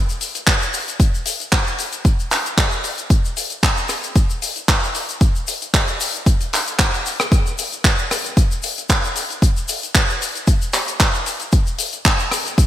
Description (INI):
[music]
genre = nu-disco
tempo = 114 BPM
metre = 4/4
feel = swing 53% on 16ths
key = none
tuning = none
[part]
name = tight funk drum kit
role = drums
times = 0.1-12.7 s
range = handclaps, hi-hat, rim click, shaker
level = -19 LUFS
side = equal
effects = gated reverb
[part]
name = electronic kick drum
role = drums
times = 0.5-12.7 s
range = none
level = -16 LUFS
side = equal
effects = none
[sound]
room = light reverb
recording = bright 1980s-style digital production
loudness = -16 LUFS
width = side -12 dB against mid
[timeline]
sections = 0.0-12.7 A section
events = none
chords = none